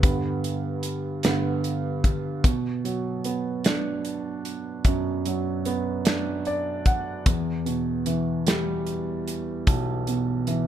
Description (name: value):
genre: six-eight pop ballad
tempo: 50 BPM (dotted quarters)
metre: 6/8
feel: straight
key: B minor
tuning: A4 = 440 Hz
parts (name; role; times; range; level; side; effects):
- warm baby grand piano; accompaniment; 0.0-10.7 s; B1 to F#5; -26 LUFS; right 2 dB; none
- modern studio drum kit; drums; 0.0-10.7 s; hi-hat, kick drum, snare drum; -23 LUFS; equal; none
room: small room ambience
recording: dark, warm production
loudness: -24 LUFS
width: side -10 dB against mid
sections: 0.0-2.4 A section; 2.4-10.7 B section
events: grand piano solo 0.0-2.4; grand piano fill 6.1-7.3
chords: 0.0 G; 2.4 Bm; 7.3 Em